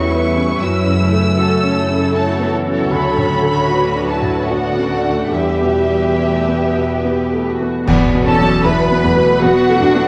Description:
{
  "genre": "cinematic, emotional film score for orchestra",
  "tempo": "70-79 BPM",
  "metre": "3/4",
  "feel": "rubato",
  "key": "E dorian",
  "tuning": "A4 = 441 Hz",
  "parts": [
    { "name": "warm symphonic violin section", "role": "melody", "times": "0.0-10.1 s", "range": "E5 to E6", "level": "-25 LUFS", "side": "equal", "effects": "none" },
    { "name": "rich studio violin section", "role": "second line", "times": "0.0-10.1 s", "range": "F#4 to B5", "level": "-26 LUFS", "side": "equal", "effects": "none" },
    { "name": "bright baby grand piano", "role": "accompaniment", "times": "0.0-10.1 s", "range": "D2 to G4", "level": "-22 LUFS", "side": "equal", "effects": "none" },
    { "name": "rich symphonic viola section", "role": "accompaniment", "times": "0.0-10.1 s", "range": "E3 to B4", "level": "-23 LUFS", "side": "equal", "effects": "none" },
    { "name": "concert harp", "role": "arpeggios", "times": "0.0-10.1 s", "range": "E2 to F#5", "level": "-25 LUFS", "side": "equal", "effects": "none" },
    { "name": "rich symphonic cello section", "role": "bass", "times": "0.0-10.1 s", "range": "A3 to A4", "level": "-24 LUFS", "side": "equal", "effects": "none" },
    { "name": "rich symphonic double bass section", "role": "bass", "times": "0.0-9.9 s", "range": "D2 to F#2", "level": "-24 LUFS", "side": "equal", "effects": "none" },
    { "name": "mellow French horn section", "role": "sustained chords", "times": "7.9-10.1 s", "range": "B3 to F#4", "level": "-23 LUFS", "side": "equal", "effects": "none" },
    { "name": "clash cymbals and concert bass drum", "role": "percussion", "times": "7.9-9.4 s", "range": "none", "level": "-24 LUFS", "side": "equal", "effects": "none" }
  ],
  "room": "wet scoring stage reverb, RT60 1.7 s",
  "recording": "worn, warbling old tape, cassette tape, warbly pitch drift",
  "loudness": "-15 LUFS",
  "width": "mono",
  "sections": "0.0-7.9 A section; 7.9-10.1 A section",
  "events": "band accent 7.9-8.7",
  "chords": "0.0 A7/E; 0.6 F#m7; 2.9 D; 5.3 Em; 7.9 Esus2"
}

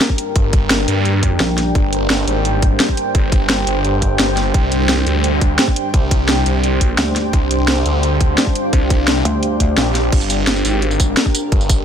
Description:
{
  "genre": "dark technical drum and bass",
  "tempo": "172 BPM",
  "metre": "4/4",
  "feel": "straight",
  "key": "G minor",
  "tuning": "A4 = 439 Hz",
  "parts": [
    { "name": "deep dark ambient pad", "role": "sustained chords", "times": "0.1-11.8 s", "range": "G3 to G5", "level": "-22 LUFS", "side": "left 1 dB", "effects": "chorus, built-in reverb, sidechain pumping" },
    { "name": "drum and bass drum kit", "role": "drums", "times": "0.0-11.8 s", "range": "crash cymbal, hi-hat, snare drum, tambourine", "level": "-18 LUFS", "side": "equal", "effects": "none" },
    { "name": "airy breathy pad", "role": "texture", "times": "0.0-11.8 s", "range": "D4 to G5", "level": "-23 LUFS", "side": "right 2 dB", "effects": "chorus, sidechain pumping" },
    { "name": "electronic kick drum", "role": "drums", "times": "0.1-11.8 s", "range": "none", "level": "-15 LUFS", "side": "equal", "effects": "none" },
    { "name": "phased detuned saw bass", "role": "bass", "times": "0.4-11.8 s", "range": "G1 to G2", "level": "-18 LUFS", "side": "equal", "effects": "phaser, tube saturation, sidechain pumping" },
    { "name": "metallic wobble bass", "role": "bass", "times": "1.4-1.7, 7.0-9.8 s", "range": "Bb1 to D2", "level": "-18 LUFS", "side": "equal", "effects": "chorus" }
  ],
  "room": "light reverb",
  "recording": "none",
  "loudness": "-13 LUFS",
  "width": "side -8 dB against mid",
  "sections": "0.0-11.8 A section",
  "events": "none",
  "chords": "0.0 Gm; 4.5 Csus2; 10.1 Gm"
}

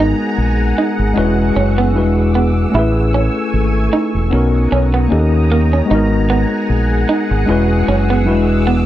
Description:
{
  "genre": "R&B, neo-soul",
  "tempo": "76 BPM",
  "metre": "4/4",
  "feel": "swing 55% on 16ths",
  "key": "G# minor",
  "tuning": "A4 = 440 Hz",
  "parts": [
    { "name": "electric guitar through a small old amp", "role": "second line", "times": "0.0-8.8 s", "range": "A#3 to E4", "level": "-18 LUFS", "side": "right 4 dB", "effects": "none" },
    { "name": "tine electric piano", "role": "accompaniment", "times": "0.0-8.9 s", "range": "F#3 to B4", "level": "-17 LUFS", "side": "left 2 dB", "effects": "medium stereo tremolo" },
    { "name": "soft string machine", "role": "sustained chords", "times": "0.0-8.9 s", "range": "A3 to E6", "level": "-22 LUFS", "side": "equal", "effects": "ensemble chorus" },
    { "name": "deep dub fingered electric bass", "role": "bass", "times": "0.0-8.9 s", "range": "E1 to D#2", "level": "-15 LUFS", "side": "equal", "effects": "none" }
  ],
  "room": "little or no reverb",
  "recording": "dry, close 1970s-style studio recording",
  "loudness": "-12 LUFS",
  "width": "side -13 dB against mid",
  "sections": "0.0-8.9 A section",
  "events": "none",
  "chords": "0.0 G#m9; 1.2 E69; 1.9 E9; 2.7 Amaj7; 4.3 Bmaj7; 5.1 D#7; 5.9 G#m9; 7.5 E69; 8.3 E9"
}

